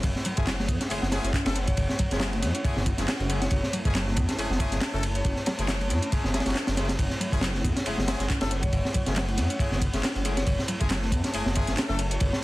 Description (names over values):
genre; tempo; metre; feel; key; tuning
breakbeat, breaks; 138 BPM; 4/4; swing 55% on 16ths; F# minor; A4 = 445 Hz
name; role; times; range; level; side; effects
dark analog pad; sustained chords; 0.0-12.4 s; A3 to A5; -37 LUFS; equal; chorus, sidechain pumping
phased detuned saw bass; bass; 0.0-12.3 s; F#1 to F#2; -29 LUFS; equal; phaser
crunchy breakbeat drum kit; drums; 0.0-12.4 s; kick drum, ride cymbal, snare drum; -27 LUFS; equal; none
garage drum kit; drums; 0.0-12.3 s; handclaps, hi-hat; -34 LUFS; equal; none
picked electric bass; riff; 0.3-12.0 s; F#3 to C#4; -35 LUFS; equal; overdrive, tape echo
bright horn section; stabs; 0.4-12.0 s; F#3 to A4; -35 LUFS; left 2 dB; tape echo
vibraphone with medium hard mallets; melody; 1.7-12.4 s; C#5; -38 LUFS; equal; telephone sound, tape echo
room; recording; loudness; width
light reverb, small room ambience; dense, heavily limited modern master, vinyl crackle; -24 LUFS; side -18 dB against mid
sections
0.0-12.4 A section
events
none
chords
0.0 F#m7